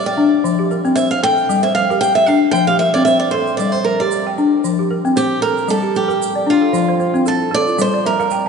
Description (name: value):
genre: west african traditional, West African string and xylophone music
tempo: 114 BPM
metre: 4/4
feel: swing 55% on 16ths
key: G dorian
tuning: A4 = 441 Hz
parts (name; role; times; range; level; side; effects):
- picked old ladder-braced acoustic guitar; melody; 0.0-8.5 s; F4 to G5; -17 LUFS; right 2 dB; none
- balafon; arpeggios; 0.0-8.5 s; F3 to G5; -16 LUFS; left 2 dB; none
- egg shaker; percussion; 0.5-8.4 s; none; -34 LUFS; right 11 dB; none
room: wet cathedral reverb, RT60 4.4 s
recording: recorded in a church or concert hall, nothing above 10.4 kHz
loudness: -13 LUFS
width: side -5 dB against mid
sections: 0.0-5.7 A section; 5.7-8.5 B section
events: steel-string acoustic guitar solo 0.0-5.7; balafon fill 7.9-8.5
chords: 0.4 F; 1.5 Gm; 2.5 F; 3.6 Gm; 4.6 F; 5.7 Gm; 6.7 F; 7.8 Gm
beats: 0.44 0.97 | 1.49 2.02 2.54 3.06 | 3.59 4.11 4.64 5.16 | 5.69 6.21 6.74 7.26 | 7.79 8.31